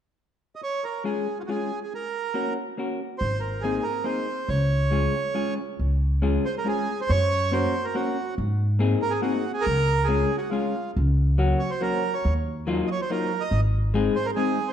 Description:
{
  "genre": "musette waltz",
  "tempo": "140 BPM",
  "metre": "3/4",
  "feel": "straight",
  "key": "Db major",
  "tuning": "A4 = 440 Hz",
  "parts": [
    { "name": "bandoneon", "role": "melody", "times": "0.6-14.7 s", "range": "F4 to Eb5", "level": "-27 LUFS", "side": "right 4 dB", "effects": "none" },
    { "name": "vintage hollow-body jazz guitar", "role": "accompaniment", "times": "1.0-14.6 s", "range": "Gb3 to Bb4", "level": "-27 LUFS", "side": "left 3 dB", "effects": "none" },
    { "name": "upright bass", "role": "bass", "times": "3.2-14.1 s", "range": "Ab1 to Ab2", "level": "-24 LUFS", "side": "equal", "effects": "none" }
  ],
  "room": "moderate recital hall reverb, RT60 1.5 s",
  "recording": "dark, warm production",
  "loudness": "-22 LUFS",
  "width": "side -9 dB against mid",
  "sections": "0.6-5.8 A section; 5.8-14.7 B section",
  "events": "none",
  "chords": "0.0 N.C.; 0.6 Db; 1.9 Gb; 3.2 Abadd9; 4.5 Db; 7.1 Gb; 8.4 Abadd9; 9.7 Db; 11.0 Gb/Db; 12.2 Ebmadd9; 13.5 Ab",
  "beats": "0.17 | 0.61 1.04 1.48 | 1.91 2.34 2.77 | 3.20 3.63 4.05 | 4.48 4.91 5.36 | 5.79 6.23 6.66 | 7.09 7.52 7.95 | 8.38 8.80 9.23 | 9.65 10.08 10.51 | 10.95 11.39 11.81 | 12.24 12.67 13.09 | 13.51 13.94 14.37"
}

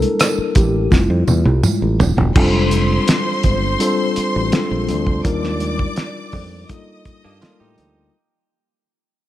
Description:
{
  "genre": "lush 1970s-style soul",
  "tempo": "83 BPM",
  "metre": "4/4",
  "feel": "straight",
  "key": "F major",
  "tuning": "A4 = 439 Hz",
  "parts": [
    { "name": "mellow tine electric piano", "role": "accompaniment", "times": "0.0-8.2 s", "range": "G3 to Bb4", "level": "-20 LUFS", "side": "left 3 dB", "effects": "slow stereo tremolo" },
    { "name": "fingered electric bass", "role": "bass", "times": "0.0-8.1 s", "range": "Eb1 to A2", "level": "-19 LUFS", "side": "equal", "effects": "none" },
    { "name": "cloth-damped thuddy drum kit", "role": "drums", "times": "0.0-7.9 s", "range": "crash cymbal, hi-hat, kick drum, rim click, snare drum, toms", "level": "-18 LUFS", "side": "right 1 dB", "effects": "none" },
    { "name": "congas", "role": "percussion", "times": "0.2-7.9 s", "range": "none", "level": "-29 LUFS", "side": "right 7 dB", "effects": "none" },
    { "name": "tambourine", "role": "percussion", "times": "0.2-2.2 s", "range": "none", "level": "-30 LUFS", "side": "right 9 dB", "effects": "none" },
    { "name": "warm studio string section", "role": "second line", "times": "2.4-8.1 s", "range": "C5 to Eb6", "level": "-24 LUFS", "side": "equal", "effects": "none" },
    { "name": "direct-recorded clean electric guitar", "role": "riff", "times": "7.2-8.1 s", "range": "Bb3 to G4", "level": "-59 LUFS", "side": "right 6 dB", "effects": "spring reverb" }
  ],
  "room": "light reverb, studio reverb",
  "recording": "none",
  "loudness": "-14 LUFS",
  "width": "side -14 dB against mid",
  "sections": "0.0-2.4 A section; 2.4-8.1 B section",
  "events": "tine electric piano solo 0.0-2.4; drum fill 0.9-2.4; fade-out 2.4-8.1",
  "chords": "0.0 C13 (rootless); 0.9 Fmaj7; 2.4 F69; 5.2 Ebmaj9",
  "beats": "0.20 0.92 1.64 | 2.36 3.08 3.80 4.53 | 5.25 5.97 6.69 7.41"
}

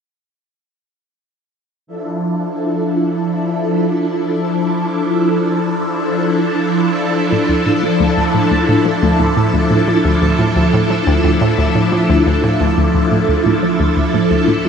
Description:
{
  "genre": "ambient, sequencer-driven space music",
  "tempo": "88 BPM",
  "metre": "4/4",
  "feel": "straight",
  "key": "D minor",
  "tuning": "A4 = 440 Hz",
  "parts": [
    { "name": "phased string machine", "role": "sustained chords", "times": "1.9-14.7 s", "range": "F3 to A4", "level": "-14 LUFS", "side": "equal", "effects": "ensemble chorus, phaser" },
    { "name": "hollow square pluck", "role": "riff", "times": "7.3-14.7 s", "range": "D2 to F3", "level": "-16 LUFS", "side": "equal", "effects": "chorus, phaser, analog delay" },
    { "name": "round analog bass", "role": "bass", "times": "12.8-14.7 s", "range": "D2", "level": "-41 LUFS", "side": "equal", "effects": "none" }
  ],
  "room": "wet huge ambient reverb, RT60 7.5 s",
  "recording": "dreamy mix soaked in reverb",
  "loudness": "-13 LUFS",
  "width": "side -6 dB against mid",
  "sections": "1.9-12.8 A section; 12.8-14.7 B section",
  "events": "filter sweep on string machine 1.9-12.8; filter sweep on synth arpeggio sound 12.8-14.7",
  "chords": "1.9 Dmadd9",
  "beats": "| 1.87 2.55 3.23 3.91 | 4.60 5.28 5.96 6.64 | 7.32 8.01 8.69 9.37 | 10.05 10.73 11.41 12.10 | 12.78 13.46 14.14"
}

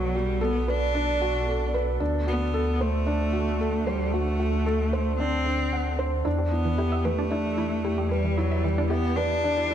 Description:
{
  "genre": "electronica",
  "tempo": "113 BPM",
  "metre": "4/4",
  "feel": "straight",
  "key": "E minor",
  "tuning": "A4 = 440 Hz",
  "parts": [
    { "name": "clear cello", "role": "melody", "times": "0.0-9.7 s", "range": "F#3 to D4", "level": "-28 LUFS", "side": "equal", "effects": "none" },
    { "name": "granular cloud pad", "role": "sustained chords", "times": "0.0-9.7 s", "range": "B3 to G5", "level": "-36 LUFS", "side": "right 1 dB", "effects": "built-in reverb" },
    { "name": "felt-muted upright piano", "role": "riff", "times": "0.0-9.7 s", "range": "D4 to F#5", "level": "-29 LUFS", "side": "equal", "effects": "ping-pong delay" },
    { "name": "dark detuned saw bass", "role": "bass", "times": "0.0-9.7 s", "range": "B1 to E2", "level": "-27 LUFS", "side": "equal", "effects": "none" },
    { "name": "analog pluck", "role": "arpeggios", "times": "6.2-9.6 s", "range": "E3 to E5", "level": "-34 LUFS", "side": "right 4 dB", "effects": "chorus, ping-pong delay" }
  ],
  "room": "moderate scoring stage reverb, RT60 1.6 s, small room ambience",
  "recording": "dark, warm production",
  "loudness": "-23 LUFS",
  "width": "side -9 dB against mid",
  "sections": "0.0-9.7 A section",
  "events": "none",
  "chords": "0.0 Bm7; 2.0 D7; 6.3 Em7",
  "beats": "0.41 0.95 1.48 | 2.01 2.54 3.07 3.60 | 4.13 4.66 5.19 5.72 | 6.26 6.79 7.32 7.85 | 8.38 8.91 9.44"
}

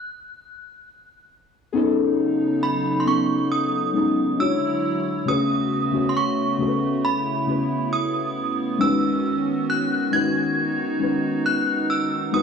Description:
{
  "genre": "R&B",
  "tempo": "68 BPM",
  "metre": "4/4",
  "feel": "straight",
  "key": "unclear",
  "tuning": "A4 = 440 Hz",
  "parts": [
    { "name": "synth chime", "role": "melody", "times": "0.0-12.4 s", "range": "B5 to G#6", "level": "-25 LUFS", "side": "right 2 dB", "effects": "ensemble chorus, analog delay" },
    { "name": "muted felt-like synth keys", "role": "accompaniment", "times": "1.7-12.4 s", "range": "C#3 to C#5", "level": "-22 LUFS", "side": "left 4 dB", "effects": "chorus, cassette tape" },
    { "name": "hollow soft pad", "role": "sustained chords", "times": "1.7-12.4 s", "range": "C#3 to C#5", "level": "-26 LUFS", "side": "right 4 dB", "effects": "chorus, cassette tape" }
  ],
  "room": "light reverb",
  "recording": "home recording on cassette, small room ambience",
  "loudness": "-20 LUFS",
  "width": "side -6 dB against mid",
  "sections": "0.0-1.7 A section; 1.7-12.4 A section",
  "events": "stop 0.0-1.7",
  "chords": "0.0 N.C.; 1.7 B13; 4.4 E13; 5.3 Amaj13/C#; 8.8 C#9sus4",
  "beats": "0.85 | 1.74 2.62 3.50 4.38 | 5.27 6.15 7.03 7.91 | 8.80 9.68 10.56 11.44 | 12.32"
}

